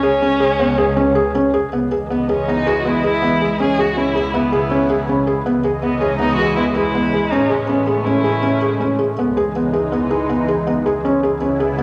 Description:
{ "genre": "contemporary instrumental, chamber music in an uneven meter", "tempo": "161 BPM", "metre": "5/4", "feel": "straight", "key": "unclear", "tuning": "A4 = 440 Hz", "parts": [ { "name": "rich violin", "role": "melody", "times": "0.0-8.8 s", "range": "B3 to G#4", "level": "-24 LUFS", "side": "equal", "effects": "none" }, { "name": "felt-muted upright piano", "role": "arpeggios", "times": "0.0-11.8 s", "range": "B3 to G#4", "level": "-20 LUFS", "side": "equal", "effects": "none" }, { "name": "warm double bass", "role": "bass", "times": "0.0-11.8 s", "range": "A1 to C#2", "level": "-28 LUFS", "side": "equal", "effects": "none" }, { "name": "lush unison pad", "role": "sustained chords", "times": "1.7-11.8 s", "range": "C#3 to D#5", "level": "-25 LUFS", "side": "equal", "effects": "chorus, phaser" } ], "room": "wet recital hall reverb, RT60 1.7 s", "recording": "none", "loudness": "-17 LUFS", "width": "mono", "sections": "0.0-1.7 A section; 1.7-11.8 B section", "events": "none", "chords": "0.0 C#5; 1.7 Emaj7/C#; 3.6 C#m7; 5.5 Emaj7/C#; 7.3 Amaj7; 9.2 Emaj7/C#; 11.0 C#m7" }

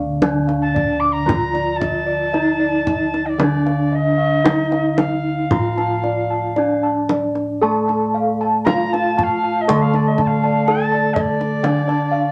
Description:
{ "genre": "Javanese gamelan", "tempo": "57-64 BPM", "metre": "4/4", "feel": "straight", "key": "D pelog", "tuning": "A4 = 440 Hz", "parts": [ { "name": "gamelan-type bronze metallophone", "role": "melody", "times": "0.0-12.3 s", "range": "D4 to A4", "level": "-24 LUFS", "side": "equal", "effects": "none" }, { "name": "gamelan-type bronze metallophone", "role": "accompaniment", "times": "0.0-12.3 s", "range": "D3 to A3", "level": "-26 LUFS", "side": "equal", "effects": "none" }, { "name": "gamelan-type bossed gongs", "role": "arpeggios", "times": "0.0-12.3 s", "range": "D5 to A5", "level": "-27 LUFS", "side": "equal", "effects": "none" }, { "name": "gamelan-type bossed gongs", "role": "bass", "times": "0.0-12.3 s", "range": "D2 to A4", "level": "-28 LUFS", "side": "equal", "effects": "none" }, { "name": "kendang", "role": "percussion", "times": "0.2-12.0 s", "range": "none", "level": "-24 LUFS", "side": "equal", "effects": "none" }, { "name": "breathy bright alto recorder", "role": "second line", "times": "0.6-12.3 s", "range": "D5 to D6", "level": "-25 LUFS", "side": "equal", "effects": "none" }, { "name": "gamelan-type bronze metallophone", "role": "arpeggios", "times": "7.6-12.3 s", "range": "D5 to A5", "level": "-24 LUFS", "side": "equal", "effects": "none" } ], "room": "wet club reverb, RT60 0.6 s", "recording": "none", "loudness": "-18 LUFS", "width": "mono", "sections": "0.0-12.3 A section", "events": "none", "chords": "none" }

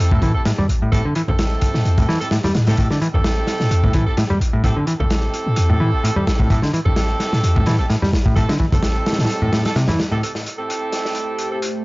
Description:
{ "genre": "breakbeat, breaks", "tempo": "129 BPM", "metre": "4/4", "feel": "swing 54% on 16ths", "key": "A minor", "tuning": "A4 = 438 Hz", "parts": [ { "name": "warm horn section", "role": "stabs", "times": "0.0-11.6 s", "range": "C4 to A4", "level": "-25 LUFS", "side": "right 2 dB", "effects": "low-pass filter, tape echo" }, { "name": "warm 808-style bass", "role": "bass", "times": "0.0-9.3 s", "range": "A1 to A2", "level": "-19 LUFS", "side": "equal", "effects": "none" }, { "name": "crunchy breakbeat drum kit", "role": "drums", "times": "0.0-11.7 s", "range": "hi-hat, kick drum, snare drum", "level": "-21 LUFS", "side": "equal", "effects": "high-pass filter on kick, high-pass filter on hats, high-pass filter on snare, high-pass filter on room" }, { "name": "picked electric bass", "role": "riff", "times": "0.1-10.2 s", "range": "A2 to G3", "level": "-20 LUFS", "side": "equal", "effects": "overdrive, tape echo" }, { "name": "congas", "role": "percussion", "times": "0.1-10.2 s", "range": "none", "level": "-24 LUFS", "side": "equal", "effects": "none" }, { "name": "dark analog pad", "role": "sustained chords", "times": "10.8-11.8 s", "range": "A3 to C5", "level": "-27 LUFS", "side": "equal", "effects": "chorus, phaser, sidechain pumping" } ], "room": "small room ambience", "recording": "dry, gritty hardware recording, cassette tape, nothing above 7.6 kHz", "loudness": "-16 LUFS", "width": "side -23 dB against mid", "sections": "0.0-10.2 A section; 10.2-11.8 B section", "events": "none", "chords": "0.0 Am7" }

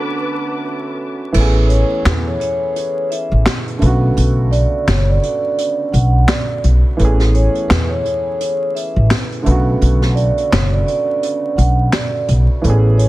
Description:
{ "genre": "hip hop, boom-bap hip-hop", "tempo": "85 BPM", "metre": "4/4", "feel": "swing 58% on 16ths", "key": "unclear", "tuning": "A4 = 440 Hz", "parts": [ { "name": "dark upright piano", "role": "accompaniment", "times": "0.0-13.1 s", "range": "C#3 to G#4", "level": "-21 LUFS", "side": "right 2 dB", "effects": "cassette tape, high-pass filter, low-pass filter" }, { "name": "warm studio string section", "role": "sustained chords", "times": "0.0-1.3 s", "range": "B4 to D6", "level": "-26 LUFS", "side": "left 2 dB", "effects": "high-pass filter, low-pass filter" }, { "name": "upright bass", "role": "bass", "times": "1.3-13.1 s", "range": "F#1 to E2", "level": "-13 LUFS", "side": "equal", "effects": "none" }, { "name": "jazz brush drum kit", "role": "drums", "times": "1.3-13.1 s", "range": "crash cymbal, handclaps, hi-hat, snare drum", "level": "-21 LUFS", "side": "equal", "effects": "vintage 12-bit sampler grit, soft clipping on snare" }, { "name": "vibraphone with soft mallets", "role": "melody", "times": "1.7-13.1 s", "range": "B4 to F#5", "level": "-20 LUFS", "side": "right 1 dB", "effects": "high-pass filter, low-pass filter" } ], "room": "small room reverb", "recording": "dense, heavily limited modern master, vinyl crackle", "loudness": "-13 LUFS", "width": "side -17 dB against mid", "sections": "0.0-1.3 A section; 1.3-13.1 B section", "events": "break 0.0-1.3; kick muted 1.3-12.6, 12.6-13.1", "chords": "0.0 Bm7; 1.3 Amaj7; 3.8 Bm7; 7.0 Amaj7; 9.5 Bm7" }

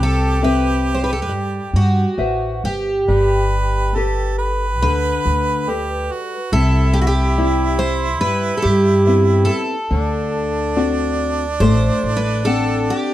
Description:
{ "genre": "fado-style ballad", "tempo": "70 BPM", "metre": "4/4", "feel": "rubato", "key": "unclear", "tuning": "A4 = 441 Hz", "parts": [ { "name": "picked twelve-string acoustic guitar", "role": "melody", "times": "0.0-13.1 s", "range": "F#4 to C5", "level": "-21 LUFS", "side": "right 1 dB", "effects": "plate reverb" }, { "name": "bright harmonica", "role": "second line", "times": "0.0-13.1 s", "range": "D4 to B4", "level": "-23 LUFS", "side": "right 3 dB", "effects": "none" }, { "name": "nylon-string guitar", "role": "accompaniment", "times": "0.0-13.1 s", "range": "C3 to F#5", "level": "-22 LUFS", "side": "left 3 dB", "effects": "none" }, { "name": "upright bass", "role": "bass", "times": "0.0-12.9 s", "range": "G1 to G2", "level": "-19 LUFS", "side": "equal", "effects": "none" } ], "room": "light reverb", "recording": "dark, warm production", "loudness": "-15 LUFS", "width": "side -14 dB against mid", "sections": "0.0-13.1 A section", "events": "none", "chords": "0.0 Cmaj7; 3.1 Gadd9; 6.5 Cmaj7; 9.9 D7" }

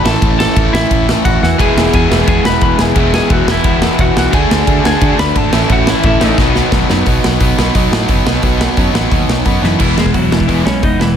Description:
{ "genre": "punk rock", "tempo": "175 BPM", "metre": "4/4", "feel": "straight", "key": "E major", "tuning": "A4 = 440 Hz", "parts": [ { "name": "lightly driven lead guitar", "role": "melody", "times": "0.0-6.6, 9.6-11.2 s", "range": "E3 to B5", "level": "-17 LUFS", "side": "left 2 dB", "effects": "none" }, { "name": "crunchy overdriven guitar", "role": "riff", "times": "0.0-11.2 s", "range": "A2 to F#4", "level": "-17 LUFS", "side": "right 16 dB", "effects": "none" }, { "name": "distorted electric guitar", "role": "riff", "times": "0.0-11.2 s", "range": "E2 to D4", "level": "-18 LUFS", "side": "left 14 dB", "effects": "overdrive" }, { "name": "picked electric bass", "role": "bass", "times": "0.1-11.2 s", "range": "E1 to D3", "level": "-17 LUFS", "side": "equal", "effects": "none" }, { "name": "big rock drum kit", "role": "drums", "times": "0.1-11.1 s", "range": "crash cymbal, hi-hat, kick drum, snare drum", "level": "-15 LUFS", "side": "equal", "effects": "none" }, { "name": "overdriven electric guitar", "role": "riff", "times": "1.6-7.1, 9.8-11.2 s", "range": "A2 to F#4", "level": "-18 LUFS", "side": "left 1 dB", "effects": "none" } ], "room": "little or no reverb", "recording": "none", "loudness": "-10 LUFS", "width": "side -8 dB against mid", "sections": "0.0-7.1 A section; 7.1-9.8 B section; 9.8-11.2 C section", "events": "drum fill 1.4, 6.4-7.1, 9.6", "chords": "0.0 A; 1.6 E; 4.3 D; 5.5 A; 6.4 B; 9.8 E" }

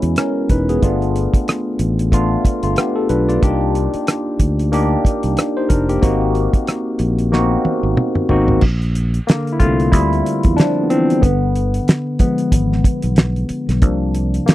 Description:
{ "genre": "lush 1970s-style soul", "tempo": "92 BPM", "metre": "4/4", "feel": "swing 58% on 16ths", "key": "unclear", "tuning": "A4 = 439 Hz", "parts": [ { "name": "barky tine electric piano", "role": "accompaniment", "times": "0.0-14.5 s", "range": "C3 to D5", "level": "-17 LUFS", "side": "left 1 dB", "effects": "overdrive, phaser" }, { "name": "fingered electric bass", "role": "bass", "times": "0.0-14.4 s", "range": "E1 to E2", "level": "-18 LUFS", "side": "equal", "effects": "none" }, { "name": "cloth-damped thuddy drum kit", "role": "drums", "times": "0.0-14.5 s", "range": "crash cymbal, hi-hat, kick drum, rim click, snare drum, toms", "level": "-14 LUFS", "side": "equal", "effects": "none" } ], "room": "little or no reverb", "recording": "dry, close 1970s-style studio recording", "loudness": "-14 LUFS", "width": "side -15 dB against mid", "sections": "0.0-8.6 A section; 8.6-14.5 B section", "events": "drum fill 7.3-8.6; tine electric piano solo 8.6-14.5", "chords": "0.0 E69; 0.8 G7; 3.4 Cm7; 6.0 Ab9; 8.6 Bb69; 11.2 G7b9; 13.8 C9sus4" }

